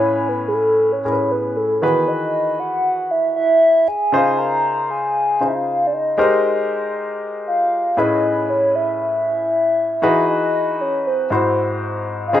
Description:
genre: funk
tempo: 117 BPM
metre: 4/4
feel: straight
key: unclear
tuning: A4 = 439 Hz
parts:
  - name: hollow clarinet-like synth lead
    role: melody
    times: 0.0-12.4 s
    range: G#4 to Bb5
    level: -18 LUFS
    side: equal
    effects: chorus
  - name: clear grand piano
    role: accompaniment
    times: 0.0-12.4 s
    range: Ab2 to G#5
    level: -20 LUFS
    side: left 2 dB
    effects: none
room: moderate small room ambience, RT60 0.5 s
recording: rough home demo mix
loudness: -16 LUFS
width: side -11 dB against mid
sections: 0.0-12.3 A section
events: none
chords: 0.0 Amaj9; 1.8 Emaj9; 4.1 Dbmaj9; 6.2 Abmaj9; 8.0 Amaj9; 10.0 Emaj9; 11.3 Abaug7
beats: | 0.03 0.54 1.05 1.57 | 2.08 2.59 3.10 3.62 | 4.13 4.64 5.16 5.67 | 6.18 6.70 7.21 7.72 | 8.23 8.75 9.26 9.77 | 10.29 10.80 11.31 11.82 | 12.34

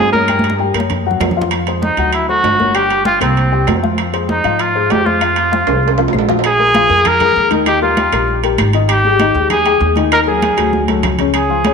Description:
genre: Afro-Cuban jazz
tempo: 195 BPM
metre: 4/4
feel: straight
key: F minor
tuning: A4 = 440 Hz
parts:
  - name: warm trumpet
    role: melody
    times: 0.0-11.7 s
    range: C4 to Bb4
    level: -14 LUFS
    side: right 1 dB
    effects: slapback echo
  - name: dark upright piano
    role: accompaniment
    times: 0.0-11.7 s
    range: Db3 to G5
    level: -18 LUFS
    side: left 10 dB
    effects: none
  - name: upright bass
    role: bass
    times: 0.0-11.7 s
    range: G1 to Ab2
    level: -19 LUFS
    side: right 1 dB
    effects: none
  - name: congas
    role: percussion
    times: 0.1-11.7 s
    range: none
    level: -22 LUFS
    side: right 2 dB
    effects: none
  - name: claves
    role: percussion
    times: 0.3-11.5 s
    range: none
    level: -30 LUFS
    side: left 11 dB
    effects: none
  - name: timbales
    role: percussion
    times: 0.3-11.7 s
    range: none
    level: -22 LUFS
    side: right 13 dB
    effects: none
room: moderate echo chamber reverb, RT60 2.8 s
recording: 1960s-style stereo with parts hard left and right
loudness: -11 LUFS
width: side -5 dB against mid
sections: 0.0-6.4 A section; 6.4-11.7 B section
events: drum fill 0.3-1.5, 5.7-6.4, 10.7-11.3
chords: 0.3 Gdim; 0.9 Gb; 1.5 Fm7; 2.1 D7; 2.7 Gmadd11; 3.4 C5; 4.0 Fm; 6.4 Bb5; 7.7 Ebadd9; 8.9 Ab5; 10.1 Ebm; 10.7 D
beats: | 0.28 0.59 0.90 1.21 | 1.52 1.82 2.13 2.44 | 2.75 3.06 3.36 3.67 | 3.98 4.29 4.59 4.90 | 5.21 5.52 5.83 6.13 | 6.44 6.75 7.05 7.36 | 7.67 7.97 8.28 8.58 | 8.89 9.20 9.50 9.81 | 10.12 10.42 10.73 11.03 | 11.34 11.64

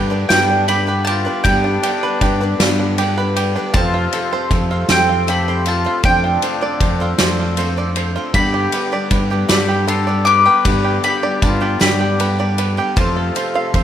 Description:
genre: indie folk with a building arrangement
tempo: 52 BPM (dotted quarters)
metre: 6/8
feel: straight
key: unclear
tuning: A4 = 440 Hz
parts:
  - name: clear upright piano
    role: accompaniment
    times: 0.0-13.8 s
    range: F1 to D5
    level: -28 LUFS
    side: right 2 dB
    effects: none
  - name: picked twelve-string acoustic guitar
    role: accompaniment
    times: 0.0-13.8 s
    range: G2 to B4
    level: -26 LUFS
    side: left 5 dB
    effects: slapback echo
  - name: pedal harmonium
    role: sustained chords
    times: 0.0-13.8 s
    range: C3 to G4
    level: -28 LUFS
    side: left 1 dB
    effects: none
  - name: bluegrass banjo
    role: arpeggios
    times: 0.0-13.8 s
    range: B3 to F5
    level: -23 LUFS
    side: right 6 dB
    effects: slapback echo
  - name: fingered electric bass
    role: bass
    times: 0.0-13.8 s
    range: F2 to G2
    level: -20 LUFS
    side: equal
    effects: none
  - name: mandolin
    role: melody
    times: 0.3-13.7 s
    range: G5 to D6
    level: -19 LUFS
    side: left 1 dB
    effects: slapback echo, tape echo
  - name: warm trumpet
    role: second line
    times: 0.3-13.7 s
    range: C4 to B4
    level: -25 LUFS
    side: left 5 dB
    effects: slapback echo
  - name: loose indie drum kit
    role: drums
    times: 0.3-13.8 s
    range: kick drum, ride cymbal, snare drum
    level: -20 LUFS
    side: equal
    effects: none
room: light reverb, studio reverb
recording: none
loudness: -14 LUFS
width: side -10 dB against mid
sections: 0.0-13.8 A section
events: none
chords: 0.0 G; 3.7 F; 6.0 Dm7/F; 8.3 G; 13.0 F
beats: 0.30 | 1.45 2.59 | 3.74 4.89 | 6.04 7.19 | 8.35 9.50 | 10.66 11.81 | 12.97

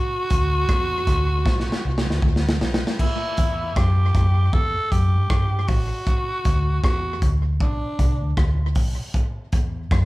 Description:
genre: roots reggae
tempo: 78 BPM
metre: 4/4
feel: swing 57% on 16ths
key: unclear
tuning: A4 = 439 Hz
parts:
  - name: growling tenor saxophone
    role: melody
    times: 0.0-8.3 s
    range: D4 to A4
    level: -26 LUFS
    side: equal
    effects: none
  - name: vintage muted fingered electric bass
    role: bass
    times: 0.3-10.1 s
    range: A1 to G2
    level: -22 LUFS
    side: equal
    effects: none
  - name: crunchy breakbeat drum kit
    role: drums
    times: 0.3-10.1 s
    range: crash cymbal, hi-hat, kick drum, rim click, snare drum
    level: -22 LUFS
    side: equal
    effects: tape echo
room: moderate large studio reverb, RT60 0.9 s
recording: band playing live in one room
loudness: -19 LUFS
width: side -19 dB against mid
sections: 0.0-3.0 A section; 3.0-10.1 B section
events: drum fill 1.5-3.0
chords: 0.0 D; 3.0 Em; 6.1 D; 9.1 N.C.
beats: 0.69 1.46 2.23 | 3.00 3.76 4.53 5.30 | 6.07 6.83 7.60 8.37 | 9.14 9.91

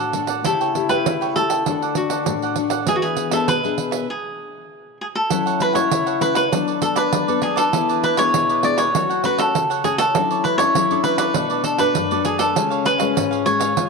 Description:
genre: samba and choro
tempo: 99 BPM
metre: 4/4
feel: straight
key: F# minor from 5.3 s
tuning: A4 = 440 Hz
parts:
  - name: cavaquinho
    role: melody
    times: 0.0-13.9 s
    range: F#4 to D5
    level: -20 LUFS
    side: right 1 dB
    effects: none
  - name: warm trombone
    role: second line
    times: 0.0-13.9 s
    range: B3 to F#4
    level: -25 LUFS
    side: left 12 dB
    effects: none
  - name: cavaquinho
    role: accompaniment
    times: 0.0-13.9 s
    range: D4 to G5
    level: -27 LUFS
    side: right 15 dB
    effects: none
  - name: nylon-string guitar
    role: accompaniment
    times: 0.0-13.9 s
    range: F#2 to A4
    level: -26 LUFS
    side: left 12 dB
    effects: none
  - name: pandeiro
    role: percussion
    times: 0.1-13.9 s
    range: none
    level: -25 LUFS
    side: right 12 dB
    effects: none
room: moderate plate reverb, RT60 2.8 s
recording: 1960s-style stereo with parts hard left and right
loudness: -17 LUFS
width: side -4 dB against mid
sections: 0.0-5.3 A section; 5.3-13.9 B section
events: stop 4.1-5.3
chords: 0.5 A7/C#; 1.7 D; 2.9 E7; 5.3 F#m7; 6.5 Bm7/F#; 7.7 E7; 8.9 F#m; 10.1 Dmaj7/F#; 11.4 Bm7; 12.6 C#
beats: | 0.45 1.06 1.67 2.27 | 2.88 3.49 4.10 4.70 | 5.31 5.92 6.52 7.12 | 7.73 8.33 8.94 9.54 | 10.15 10.75 11.36 11.96 | 12.56 13.17 13.77

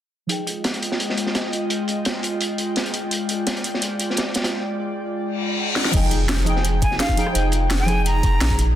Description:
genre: liquid drum and bass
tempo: 170 BPM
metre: 4/4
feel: straight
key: F dorian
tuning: A4 = 440 Hz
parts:
  - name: deep mellow chord stab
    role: accompaniment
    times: 0.3-8.8 s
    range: F3 to G5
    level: -26 LUFS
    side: equal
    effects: chorus, phaser, cassette tape, digital delay
  - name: airy breathy pad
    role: sustained chords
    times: 0.3-8.8 s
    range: Ab3 to G5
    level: -26 LUFS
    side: equal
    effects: chorus, sidechain pumping
  - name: crunchy breakbeat drum kit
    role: drums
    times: 0.3-8.7 s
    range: hi-hat, snare drum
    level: -26 LUFS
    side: equal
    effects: high-pass filter on hats, high-pass filter on snare, high-pass filter on room
  - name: drum and bass drum kit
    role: drums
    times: 0.3-8.7 s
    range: crash cymbal, hi-hat, rim click, snare drum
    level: -26 LUFS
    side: equal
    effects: overdrive, low-pass filter on hats, low-pass filter on snare, low-pass filter on cymbals, low-pass filter on room
  - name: reverse cymbal and impact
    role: sound effects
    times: 5.3-7.3 s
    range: none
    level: -27 LUFS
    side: left 2 dB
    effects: none
  - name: sub bass with octave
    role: bass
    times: 5.9-8.7 s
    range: F1 to Bb1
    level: -20 LUFS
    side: equal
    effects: tube saturation
  - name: electronic kick drum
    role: drums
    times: 5.9-8.6 s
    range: none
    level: -21 LUFS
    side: equal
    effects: overdrive
  - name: breathy bright jazz flute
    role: melody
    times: 6.8-8.6 s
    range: F5 to Bb5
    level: -25 LUFS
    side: equal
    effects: tape echo
room: light reverb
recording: dense, heavily limited modern master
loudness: -19 LUFS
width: side -11 dB against mid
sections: 0.3-5.9 A section; 5.9-8.8 B section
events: filter sweep on drum 0.3-5.9; reverse cymbal 5.3-5.9; drum fill 5.8; drop 5.9-8.8; impact 5.9-7.3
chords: 0.3 Fm9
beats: | 0.29 0.64 1.00 1.35 | 1.70 2.06 2.41 2.76 | 3.12 3.47 3.82 4.17 | 4.53 4.88 5.23 5.58 | 5.94 6.29 6.64 7.00 | 7.35 7.70 8.06 8.41

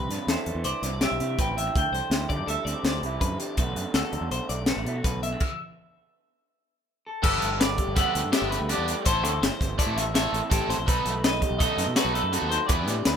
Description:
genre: math rock and midwest emo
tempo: 164 BPM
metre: 5/4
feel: straight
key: unclear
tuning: A4 = 440 Hz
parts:
  - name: electric guitar through a small old amp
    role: accompaniment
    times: 0.0-13.2 s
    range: E2 to G4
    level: -34 LUFS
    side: right 6 dB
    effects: plate reverb
  - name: twelve-string electric guitar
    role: arpeggios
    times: 0.0-13.2 s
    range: F#4 to E5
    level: -32 LUFS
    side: left 7 dB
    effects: plate reverb
  - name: growling fingered electric bass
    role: bass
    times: 0.0-13.1 s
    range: G1 to D3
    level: -31 LUFS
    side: equal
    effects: overdrive
  - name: crisp fusion drum kit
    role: drums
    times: 0.1-13.1 s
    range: crash cymbal, hi-hat, kick drum, snare drum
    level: -26 LUFS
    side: left 1 dB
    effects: none
  - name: clean electric guitar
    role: melody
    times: 0.3-3.4, 7.1-13.2 s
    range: A4 to G5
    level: -30 LUFS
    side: right 1 dB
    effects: lush chorus, plate reverb
  - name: biting overdriven guitar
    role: riff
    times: 7.2-12.9 s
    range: E3 to A4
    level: -30 LUFS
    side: right 2 dB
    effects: spring reverb
room: moderate studio reverb, RT60 0.5 s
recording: rough home demo mix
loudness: -23 LUFS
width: side -8 dB against mid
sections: 0.0-7.2 A section; 7.2-13.2 B section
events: stop 5.4-7.2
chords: 0.0 Cmaj9; 1.8 D9sus4; 3.6 Bm7; 5.4 N.C.; 7.2 Gmaj9; 9.1 Am7; 10.9 B7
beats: 0.29 0.65 1.02 1.39 | 1.75 2.12 2.48 2.85 3.22 | 3.58 3.95 4.31 4.68 5.04 | 5.41 5.78 6.14 6.51 6.87 | 7.24 7.60 7.96 8.33 8.69 | 9.06 9.42 9.79 10.15 10.51 | 10.88 11.24 11.61 11.97 12.34 | 12.70 13.07

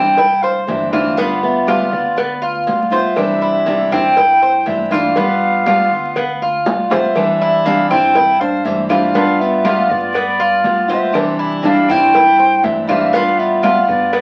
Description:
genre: latin, Cuban son and guajira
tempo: 120 BPM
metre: 4/4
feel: straight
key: C major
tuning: A4 = 441 Hz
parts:
  - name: concert flute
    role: melody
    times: 0.0-14.2 s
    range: D5 to G5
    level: -18 LUFS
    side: equal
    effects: none
  - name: nylon-string guitar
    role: second line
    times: 0.0-14.2 s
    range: B3 to E4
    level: -26 LUFS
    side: equal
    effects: none
  - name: picked steel-string acoustic guitar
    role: accompaniment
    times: 0.0-14.2 s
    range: C3 to F4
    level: -22 LUFS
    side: equal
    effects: none
  - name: Cuban tres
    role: arpeggios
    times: 0.0-14.2 s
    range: B3 to C5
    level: -21 LUFS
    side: equal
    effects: none
  - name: upright bass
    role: bass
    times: 0.0-14.2 s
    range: G1 to G2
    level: -32 LUFS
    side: equal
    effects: none
  - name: congas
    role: percussion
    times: 0.2-14.2 s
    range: none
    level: -30 LUFS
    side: equal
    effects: none
  - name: cowbell and bongos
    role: percussion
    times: 0.2-14.2 s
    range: none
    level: -25 LUFS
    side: equal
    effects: none
  - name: claves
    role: percussion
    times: 0.9-14.2 s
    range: none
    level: -35 LUFS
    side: equal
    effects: none
room: wet studio reverb, RT60 0.6 s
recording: very old 78 rpm record, vinyl crackle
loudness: -15 LUFS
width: mono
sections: 0.0-7.2 A section; 7.2-14.2 A section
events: drum fill 6.7-7.2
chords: 0.0 Cadd9; 1.2 G7; 3.2 Cadd9; 5.2 G7; 7.2 Cadd9; 9.2 G7; 11.1 Cadd9; 13.1 G7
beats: 0.18 0.68 | 1.18 1.68 2.18 2.68 | 3.18 3.67 4.17 4.67 | 5.17 5.67 6.17 6.66 | 7.16 7.66 8.16 8.66 | 9.15 9.65 10.15 10.65 | 11.14 11.64 12.14 12.64 | 13.14 13.63 14.13

